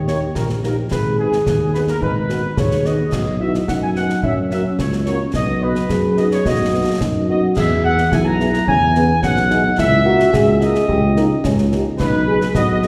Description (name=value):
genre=military-style march for wind band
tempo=108 BPM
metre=2/4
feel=straight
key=G# minor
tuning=A4 = 441 Hz
part: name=warm euphonium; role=second line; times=0.0-12.9 s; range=B3 to G#4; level=-23 LUFS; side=equal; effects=none
part: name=mellow tuba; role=bass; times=0.0-12.9 s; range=G#1 to F#2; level=-21 LUFS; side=equal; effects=none
part: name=dark trumpet section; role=melody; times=0.1-12.9 s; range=G#4 to A#5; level=-23 LUFS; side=equal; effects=none
part: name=dark French horn section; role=accompaniment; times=0.1-12.9 s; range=G#3 to G#4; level=-30 LUFS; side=equal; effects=none
part: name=concert snare drum, concert bass drum and clash cymbals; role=drums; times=0.1-12.9 s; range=none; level=-26 LUFS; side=equal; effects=none
room=wet concert hall reverb, RT60 1.9 s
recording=heard from further back in the room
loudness=-17 LUFS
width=mono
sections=0.0-12.9 A section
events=none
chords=0.0 D#; 0.9 G#m; 3.1 B; 4.2 F#; 5.3 B; 7.6 E; 9.8 A#m7b5/C#; 10.9 D#7/C#; 12.0 G#m/B